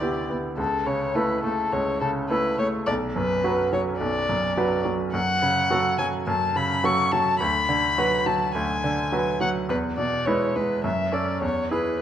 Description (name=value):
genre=quick classical-period movement for piano trio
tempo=105 BPM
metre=4/4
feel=straight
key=unclear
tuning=A4 = 440 Hz
part: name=muted violin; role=melody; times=0.0-12.0 s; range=A4 to C#6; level=-25 LUFS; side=left 3 dB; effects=none
part: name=bright grand piano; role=accompaniment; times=0.0-12.0 s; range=B1 to B4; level=-24 LUFS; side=right 2 dB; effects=none
room=moderate recital hall reverb, RT60 1.8 s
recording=none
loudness=-21 LUFS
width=side -10 dB against mid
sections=0.0-12.0 A section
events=none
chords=0.0 Em7/D; 0.6 A/C#; 2.9 Bm; 5.1 F#m; 7.4 Bm/D; 9.7 E; 10.8 F#m; 11.4 E